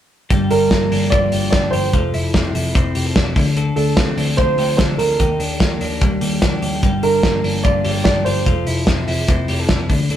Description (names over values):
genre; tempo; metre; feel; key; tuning
jangly indie pop; 147 BPM; 4/4; straight; F major; A4 = 435 Hz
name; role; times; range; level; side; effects
twelve-string electric guitar; arpeggios; 0.3-10.2 s; G2 to A4; -21 LUFS; left 2 dB; none
vintage muted picked electric bass; bass; 0.3-10.2 s; F1 to Eb2; -22 LUFS; left 1 dB; none
cloth-damped thuddy drum kit; drums; 0.3-10.2 s; hi-hat, kick drum, snare drum; -18 LUFS; equal; none
warm upright piano; melody; 0.5-8.6 s; A4 to D5; -19 LUFS; right 3 dB; none
room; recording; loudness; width
moderate stone room reverb, RT60 1.1 s; rough rehearsal-room recording; -14 LUFS; side -11 dB against mid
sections
0.3-10.2 A section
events
none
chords
0.3 Gm7; 1.9 Fmaj7; 3.4 Dm7; 5.2 Ebmaj7; 6.8 Gm7; 8.5 Fmaj7